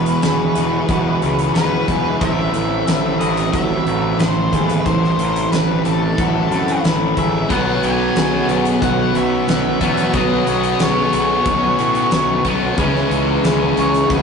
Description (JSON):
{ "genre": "rock, shoegaze and dream pop", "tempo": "91 BPM", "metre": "4/4", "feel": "straight", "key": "unclear", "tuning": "A4 = 441 Hz", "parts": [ { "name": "octave-fuzz lead guitar", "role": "melody", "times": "0.0-14.2 s", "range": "A4 to G#5", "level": "-22 LUFS", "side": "equal", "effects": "distortion" }, { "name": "sweeping resonant pad", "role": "sustained chords", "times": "0.0-14.2 s", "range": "A3 to C#6", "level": "-30 LUFS", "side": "equal", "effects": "none" }, { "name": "electric guitar through a small old amp", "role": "arpeggios", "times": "0.0-14.2 s", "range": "E4 to C5", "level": "-26 LUFS", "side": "equal", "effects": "none" }, { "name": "overdriven electric guitar", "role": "riff", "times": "0.0-14.2 s", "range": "E2 to F#4", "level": "-22 LUFS", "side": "left 5 dB", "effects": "none" }, { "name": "overdriven semi-hollow guitar", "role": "riff", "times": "0.0-14.2 s", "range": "A2 to E4", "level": "-22 LUFS", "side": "right 4 dB", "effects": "none" }, { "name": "fuzz picked electric bass", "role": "bass", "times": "0.0-14.2 s", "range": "E1 to A2", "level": "-22 LUFS", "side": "equal", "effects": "overdrive" }, { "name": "huge arena drum kit", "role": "drums", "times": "0.1-14.2 s", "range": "hi-hat, kick drum, snare drum", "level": "-22 LUFS", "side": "equal", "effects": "none" }, { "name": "distorted electric guitar", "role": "riff", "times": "7.5-14.2 s", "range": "B2 to C#4", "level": "-21 LUFS", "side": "equal", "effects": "overdrive" } ], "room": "wet studio reverb, RT60 0.6 s", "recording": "rough rehearsal-room recording, tube saturation, nothing above 10.6 kHz", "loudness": "-14 LUFS", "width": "side -6 dB against mid", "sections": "0.0-14.2 A section", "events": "none", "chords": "0.0 E; 2.2 Am; 7.5 Bsus2; 12.8 C#m7" }